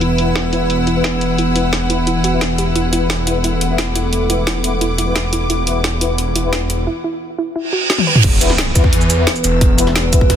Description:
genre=dark technical drum and bass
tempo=175 BPM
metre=4/4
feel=straight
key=unclear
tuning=A4 = 444 Hz
part: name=dark analog pad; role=sustained chords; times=0.0-10.4 s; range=E3 to B4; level=-21 LUFS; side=equal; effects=chorus, sidechain pumping
part: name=soft round pluck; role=arpeggios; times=0.0-8.2 s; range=E4 to B4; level=-24 LUFS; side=right 2 dB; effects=chorus, sidechain pumping, tape echo
part: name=wide detuned saw bass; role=bass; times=0.0-10.4 s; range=E1 to E2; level=-19 LUFS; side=equal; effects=chorus, overdrive
part: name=drum and bass drum kit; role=drums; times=0.0-10.4 s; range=crash cymbal, hi-hat, shaker, snare drum, toms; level=-19 LUFS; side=equal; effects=overdrive, low-pass filter on perc, small room ambience, low-pass filter on hats, low-pass filter on snare, low-pass filter on cymbals, low-pass filter on toms
part: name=rich studio string section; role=texture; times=0.0-6.9, 9.5-10.4 s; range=E4 to E6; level=-24 LUFS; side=left 1 dB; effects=sidechain pumping
part: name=dark brass ensemble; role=stabs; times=0.2-10.2 s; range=B3 to B4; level=-24 LUFS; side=left 5 dB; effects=tape echo
part: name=reverse cymbal and sub drop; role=sound effects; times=7.7-9.6 s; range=none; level=-18 LUFS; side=right 4 dB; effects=none
part: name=electronic kick drum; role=drums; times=8.2-10.4 s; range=none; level=-13 LUFS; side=equal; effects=small room ambience
room=light reverb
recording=dense, heavily limited modern master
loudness=-13 LUFS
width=side -9 dB against mid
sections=0.0-8.2 A section; 8.2-10.4 B section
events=filter sweep on drum 0.0-8.2; filter sweep on synth pluck 0.0-8.2; reverse cymbal 7.7-8.2; drum fill 7.9-8.2; drop 8.2-10.4; impact 8.2-9.6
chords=0.0 E5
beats=| 0.01 0.36 0.70 1.04 | 1.38 1.73 2.07 2.41 | 2.76 3.10 3.44 3.78 | 4.13 4.47 4.81 5.16 | 5.50 5.84 6.18 6.53 | 6.87 7.21 7.56 7.90 | 8.24 8.58 8.93 9.27 | 9.61 9.96 10.30

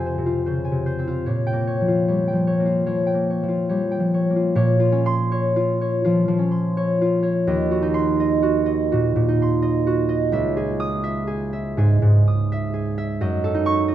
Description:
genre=classical, solo harp piece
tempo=69-88 BPM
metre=4/4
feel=rubato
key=Bb minor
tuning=A4 = 439 Hz
part: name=concert harp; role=solo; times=0.0-13.9 s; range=Db2 to Eb6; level=-18 LUFS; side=equal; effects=none
room=moderate recital hall reverb, RT60 1.4 s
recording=dark, warm production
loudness=-18 LUFS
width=side -12 dB against mid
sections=0.0-4.5 A section; 4.5-13.9 A section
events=none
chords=0.0 Fm; 1.2 Bbm6; 4.5 Bbmadd9; 7.5 Ebm6; 10.4 Dbmadd9; 13.2 Gbm6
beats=0.44 | 1.24 2.08 2.89 3.70 | 4.54 5.31 6.04 6.76 | 7.47 8.19 8.92 9.66 | 10.35 11.06 11.77 12.49 | 13.18 13.87

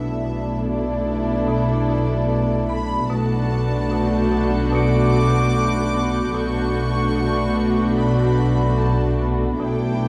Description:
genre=cinematic, suspense film score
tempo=74 BPM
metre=4/4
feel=straight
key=B minor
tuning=A4 = 440 Hz
part: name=warm symphonic violin section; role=melody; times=0.0-10.1 s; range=D5 to D6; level=-31 LUFS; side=equal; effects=none
part: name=dark studio violin section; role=second line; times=0.0-10.1 s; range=E4 to A4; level=-30 LUFS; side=equal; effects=none
part: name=dark studio viola section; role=accompaniment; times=0.0-10.1 s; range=A3 to D4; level=-26 LUFS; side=equal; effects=none
part: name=glass harmonica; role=sustained chords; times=0.0-10.1 s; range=E4 to B5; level=-33 LUFS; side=equal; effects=none
part: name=marimba with hard mallets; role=riff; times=0.0-10.1 s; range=B2 to B3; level=-28 LUFS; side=equal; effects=none
part: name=dark studio cello section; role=bass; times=0.0-10.1 s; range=B2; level=-28 LUFS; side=equal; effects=none
part: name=warm symphonic double bass section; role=bass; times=0.0-10.1 s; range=B1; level=-28 LUFS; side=equal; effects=none
part: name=large celesta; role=texture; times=0.0-10.1 s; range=D5 to C#7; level=-38 LUFS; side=equal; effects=none
part: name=warm symphonic violin section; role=texture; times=3.1-10.1 s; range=D6 to C#7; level=-40 LUFS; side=equal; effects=none
room=wet scoring stage reverb, RT60 1.9 s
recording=dark, warm production, vinyl crackle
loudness=-20 LUFS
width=mono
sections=0.0-10.1 A section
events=none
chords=0.0 Dsus2/B; 3.1 Bm7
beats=0.67 1.48 2.29 | 3.10 3.91 4.72 5.53 | 6.34 7.15 7.96 8.78 | 9.59

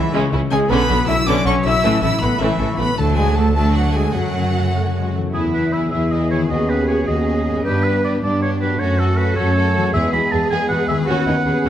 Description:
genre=cinematic, heroic adventure film score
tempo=105 BPM (dotted quarters)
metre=6/8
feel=straight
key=E major from 5.3 s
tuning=A4 = 437 Hz
part: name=warm chamber violin section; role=melody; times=0.0-11.7 s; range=F#4 to E6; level=-27 LUFS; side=left 2 dB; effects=none
part: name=clear symphonic viola section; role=accompaniment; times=0.0-11.7 s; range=C#3 to C#4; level=-28 LUFS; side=right 1 dB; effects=none
part: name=concert harp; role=arpeggios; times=0.0-11.7 s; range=F#2 to F#5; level=-25 LUFS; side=left 8 dB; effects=none
part: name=dark trumpet section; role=stabs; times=0.0-5.1 s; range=E4 to E5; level=-23 LUFS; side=left 1 dB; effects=none
part: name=rich symphonic cello section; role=bass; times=0.0-11.7 s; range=E3 to B4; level=-24 LUFS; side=right 1 dB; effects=none
part: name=rich symphonic double bass section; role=bass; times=0.0-11.7 s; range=A1 to G2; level=-21 LUFS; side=right 2 dB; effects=none
part: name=rich studio violin section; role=second line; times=0.1-11.7 s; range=G#3 to A4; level=-28 LUFS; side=left 1 dB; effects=none
part: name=warm oboe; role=second line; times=5.3-11.7 s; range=G4 to B5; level=-22 LUFS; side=right 2 dB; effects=none
part: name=warm French horn section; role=sustained chords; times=5.3-11.7 s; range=G#3 to E4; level=-23 LUFS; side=left 2 dB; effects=none
room=moderate scoring stage reverb, RT60 1.8 s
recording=none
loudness=-15 LUFS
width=side -10 dB against mid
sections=0.0-5.3 A section; 5.3-11.7 B section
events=none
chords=0.0 C#m; 0.7 Bmadd9; 1.8 A; 3.0 D; 4.1 F#m; 5.3 E; 6.5 Badd9/D#; 7.7 G; 8.8 F#m; 9.9 E; 11.1 Badd9/D#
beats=0.14 | 0.70 1.27 | 1.83 2.40 | 2.97 3.55 | 4.15 4.75 | 5.34 5.92 | 6.50 7.08 | 7.66 8.23 | 8.80 9.37 | 9.94 10.51 | 11.08 11.65

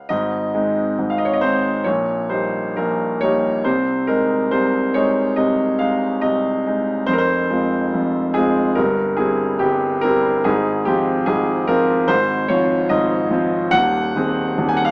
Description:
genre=classical, romantic character piece for solo piano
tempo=63-76 BPM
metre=4/4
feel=rubato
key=Ab major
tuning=A4 = 440 Hz
part: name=clear concert grand piano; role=solo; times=0.0-14.9 s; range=Eb1 to Ab5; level=-16 LUFS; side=equal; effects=none
room=light reverb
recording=small speaker sound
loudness=-16 LUFS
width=side -32 dB against mid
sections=0.1-14.9 A section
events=none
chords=0.1 Ab; 1.8 Eb/Bb; 3.6 Ab/C; 7.1 Fm; 8.8 C/G; 10.5 Fm/Ab; 13.7 Ab7/Eb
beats=| 0.10 0.97 1.85 2.76 | 3.65 4.51 5.38 6.23 | 7.08 7.93 8.78 9.62 | 10.46 11.28 12.11 12.90 | 13.72 14.57

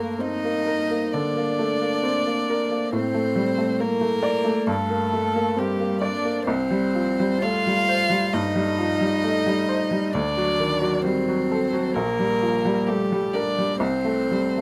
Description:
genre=classical, slow romantic movement for piano trio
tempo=66 BPM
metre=4/4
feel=uneven beats, rubato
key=unclear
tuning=A4 = 440 Hz
part: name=warm violin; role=melody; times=0.0-14.6 s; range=G4 to F5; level=-28 LUFS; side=equal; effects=none
part: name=warm cello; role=second line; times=0.0-14.6 s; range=G3 to F4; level=-29 LUFS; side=equal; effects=none
part: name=bright baby grand piano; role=accompaniment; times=0.0-14.6 s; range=Bb1 to D5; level=-26 LUFS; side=equal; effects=none
room=little or no reverb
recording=close, detailed microphones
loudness=-23 LUFS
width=mono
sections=0.0-14.6 A section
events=none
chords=0.0 Gm; 2.9 D5/A; 4.7 Gm; 6.5 Cm; 10.1 D; 12.0 Gm/Bb; 13.8 Am/C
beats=0.21 1.14 2.06 | 2.95 3.81 4.70 5.59 | 6.48 7.43 8.34 9.24 | 10.14 11.05 11.96 12.88 | 13.81

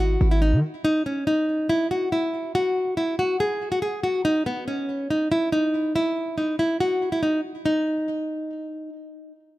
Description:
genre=hip hop, trap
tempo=141 BPM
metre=4/4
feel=half-time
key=G# minor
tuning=A4 = 440 Hz
part: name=nylon-string guitar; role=melody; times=0.0-8.9 s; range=B3 to G#4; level=-22 LUFS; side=equal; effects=digital delay
part: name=hard-hitting 808-style bass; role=bass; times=0.0-0.6 s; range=G#1 to D#3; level=-19 LUFS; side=equal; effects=none
room=light reverb, small room ambience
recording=none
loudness=-21 LUFS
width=side -17 dB against mid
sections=0.8-7.7 A section; 7.7-9.6 B section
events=none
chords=0.0 G#5; 0.8 N.C.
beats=0.42 | 0.85 1.27 1.70 2.12 | 2.55 2.97 3.40 3.82 | 4.25 4.68 5.10 5.53 | 5.95 6.38 6.80 7.23 | 7.65 8.08 8.51

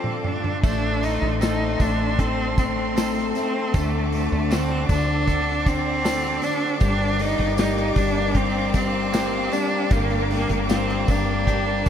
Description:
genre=pop ballad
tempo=77 BPM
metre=4/4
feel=straight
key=G minor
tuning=A4 = 440 Hz
part: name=clear cello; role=melody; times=0.0-11.9 s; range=A3 to Eb4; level=-24 LUFS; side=right 1 dB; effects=none
part: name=clear concert grand piano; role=accompaniment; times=0.0-11.9 s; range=D3 to A4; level=-27 LUFS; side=left 4 dB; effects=wide subtle chorus
part: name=warm studio string section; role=sustained chords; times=0.0-11.9 s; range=A4 to D6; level=-32 LUFS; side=left 2 dB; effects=none
part: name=direct-recorded clean electric guitar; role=arpeggios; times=0.0-11.9 s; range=G2 to A4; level=-32 LUFS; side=right 6 dB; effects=harmonic tremolo
part: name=modern studio drum kit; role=drums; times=0.0-11.9 s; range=crash cymbal, hi-hat, kick drum, snare drum, toms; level=-26 LUFS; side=equal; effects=none
part: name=woody fretless electric bass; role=bass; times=0.6-11.9 s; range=G1 to D2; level=-26 LUFS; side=equal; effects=none
part: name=tambourine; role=percussion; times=0.6-11.9 s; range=none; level=-44 LUFS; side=left 6 dB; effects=none
room=moderate huge ambient reverb, RT60 7.6 s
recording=dreamy mix soaked in reverb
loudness=-20 LUFS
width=side -9 dB against mid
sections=0.6-11.9 A section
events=drum fill 0.0-0.6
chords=0.0 Dm; 0.6 Adim; 3.7 D; 6.8 Gm7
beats=| 0.63 1.41 2.19 2.96 | 3.74 4.51 5.28 6.05 | 6.81 7.58 8.35 9.13 | 9.91 10.69 11.47

